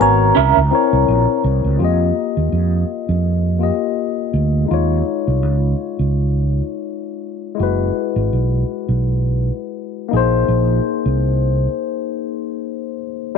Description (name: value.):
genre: R&B.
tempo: 83 BPM.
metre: 4/4.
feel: swing 56% on 16ths.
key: F minor.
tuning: A4 = 442 Hz.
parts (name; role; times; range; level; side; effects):
vibraphone with soft mallets; melody; 0.0-1.4 s; Bb5; -18 LUFS; right 6 dB; slapback echo.
barky tine electric piano; accompaniment; 0.0-13.4 s; Ab3 to Eb5; -20 LUFS; left 13 dB; overdrive, wide subtle chorus.
mellow fretless electric bass; bass; 0.0-11.7 s; Gb1 to F2; -16 LUFS; right 2 dB; lush chorus.
electric guitar through a small old amp; second line; 0.3-0.6 s; Db4 to Bb4; -18 LUFS; right 15 dB; tremolo.
room: little or no reverb.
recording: 1960s-style stereo with parts hard left and right.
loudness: -15 LUFS.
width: side -6 dB against mid.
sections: 0.0-1.8 A section; 1.8-13.4 B section.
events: none.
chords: 0.0 Abm11; 0.4 C7b9; 1.8 F9sus4; 4.7 Eb9sus4; 7.6 Gb9sus4; 10.1 Bb9sus4.